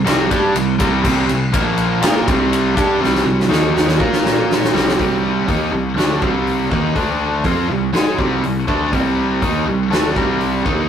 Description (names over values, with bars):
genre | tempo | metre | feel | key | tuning
hard rock | 122 BPM | 4/4 | straight | C dorian | A4 = 439 Hz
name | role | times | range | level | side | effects
scooped high-gain guitar | riff | 0.0-10.9 s | Bb2 to Bb4 | -19 LUFS | left 5 dB | distortion
picked electric bass | bass | 0.0-10.9 s | Bb1 to Bb2 | -25 LUFS | left 1 dB | none
overdriven semi-hollow guitar | riff | 0.1-10.9 s | Bb2 to Bb4 | -19 LUFS | right 4 dB | none
huge arena drum kit | drums | 0.1-10.8 s | crash cymbal, hi-hat, kick drum, ride cymbal, snare drum | -19 LUFS | equal | none
room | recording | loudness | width
moderate studio reverb, RT60 0.6 s | rough rehearsal-room recording, tube saturation | -14 LUFS | side -8 dB against mid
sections
0.0-5.0 A section; 5.0-10.9 B section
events
drum fill 3.0-5.0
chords
0.0 C5; 1.5 Bb5; 2.0 Cm; 4.0 Bb5; 4.7 C5; 5.0 Cm; 7.0 D5; 7.5 Cm